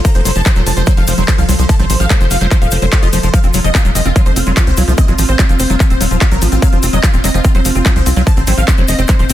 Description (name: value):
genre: psychedelic trance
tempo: 146 BPM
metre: 4/4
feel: straight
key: unclear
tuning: A4 = 440 Hz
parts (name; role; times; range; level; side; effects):
- supersaw stab; melody; 0.0-9.3 s; F4 to Bb5; -21 LUFS; equal; phaser, sidechain pumping, dub echo
- evolving wavetable pad; sustained chords; 0.0-9.3 s; F3 to A4; -21 LUFS; right 1 dB; phaser, built-in reverb, sidechain pumping
- liquid acid bass; riff; 0.0-9.3 s; Eb3 to F4; -21 LUFS; moving between left 4 dB and right 5 dB; chorus, auto-pan, sidechain pumping, tape echo
- big-room dance drum kit; drums; 0.0-9.3 s; handclaps, hi-hat; -20 LUFS; equal; overdrive, studio reverb
- electronic kick drum; drums; 0.0-9.2 s; none; -12 LUFS; equal; overdrive, studio reverb
- egg shaker; percussion; 0.1-9.3 s; none; -25 LUFS; left 7 dB; none
- tight sequencer bass; bass; 0.2-9.3 s; Eb1 to C2; -14 LUFS; equal; none
- resonant blip pluck; second line; 4.0-8.7 s; A3 to C4; -29 LUFS; right 5 dB; none
room: digital ambience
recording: dense, heavily limited modern master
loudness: -9 LUFS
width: side -13 dB against mid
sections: 0.0-9.3 A section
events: none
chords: 0.0 F5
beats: | 0.05 0.46 0.87 1.28 | 1.69 2.10 2.51 2.92 | 3.34 3.75 4.16 4.57 | 4.98 5.39 5.80 6.21 | 6.62 7.03 7.45 7.86 | 8.27 8.68 9.09